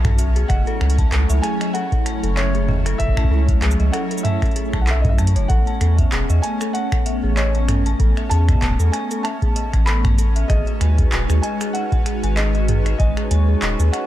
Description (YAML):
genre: IDM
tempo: 96 BPM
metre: 4/4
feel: swing 56% on 16ths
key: A lydian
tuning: A4 = 440 Hz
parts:
  - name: felt-muted upright piano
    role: melody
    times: 0.0-14.1 s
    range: C#5 to B5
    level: -28 LUFS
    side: right 1 dB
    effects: digital delay
  - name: hollow soft pad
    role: sustained chords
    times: 0.0-14.1 s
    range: F#3 to B4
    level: -26 LUFS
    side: equal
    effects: ensemble chorus
  - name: dark detuned synth bell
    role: arpeggios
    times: 0.0-14.0 s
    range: G#4 to A5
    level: -30 LUFS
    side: left 4 dB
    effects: chorus, digital delay
  - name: round analog bass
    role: bass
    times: 0.0-13.9 s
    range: D#1 to F#2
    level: -18 LUFS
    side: equal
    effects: none
  - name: booming analog drum machine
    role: drums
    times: 0.0-14.1 s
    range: cabasa, finger snaps, handclaps, hi-hat, toms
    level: -26 LUFS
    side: right 1 dB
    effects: overdrive
  - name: electronic kick drum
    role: drums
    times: 0.0-13.1 s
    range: none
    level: -20 LUFS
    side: equal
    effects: overdrive
  - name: bubbling stepped-filter texture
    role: texture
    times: 0.0-14.1 s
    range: C#4 to C#5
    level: -35 LUFS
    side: right 1 dB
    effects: chorus, built-in reverb, sidechain pumping
room: little or no reverb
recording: dark, warm production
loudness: -16 LUFS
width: side -13 dB against mid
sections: 0.0-14.1 A section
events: none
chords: 0.0 F#m7; 5.5 Aadd9; 10.5 G#m7